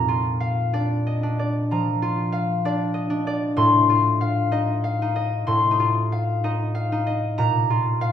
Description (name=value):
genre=classical, solo harp piece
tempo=63 BPM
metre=4/4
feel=rubato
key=Bb major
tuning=A4 = 440 Hz
part: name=concert harp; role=solo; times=0.0-8.1 s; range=A2 to C6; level=-20 LUFS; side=left 1 dB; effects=none
room=wet recital hall reverb, RT60 1.3 s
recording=heard from further back in the room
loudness=-20 LUFS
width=side -9 dB against mid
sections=0.0-8.1 A section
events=none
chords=0.0 Bb; 3.6 F7/A; 7.4 Bb5